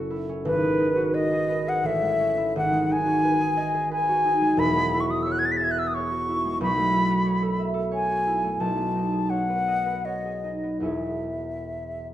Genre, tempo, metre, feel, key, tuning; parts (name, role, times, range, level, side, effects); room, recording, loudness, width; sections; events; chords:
classical, impressionist duo for flute and harp; 74-91 BPM; 3/4; rubato; E major; A4 = 440 Hz
concert harp; accompaniment; 0.0-12.1 s; E1 to E5; -25 LUFS; right 1 dB
mellow silver concert flute; melody; 0.5-12.1 s; B4 to B6; -24 LUFS; left 1 dB
wet recital hall reverb, RT60 1.4 s; dark, warm production; -22 LUFS; side -12 dB against mid
0.0-12.1 A section
0.5 G#m7; 1.9 Amaj9; 2.6 G#m7; 4.6 E69; 6.6 B11; 8.6 B13; 10.8 E6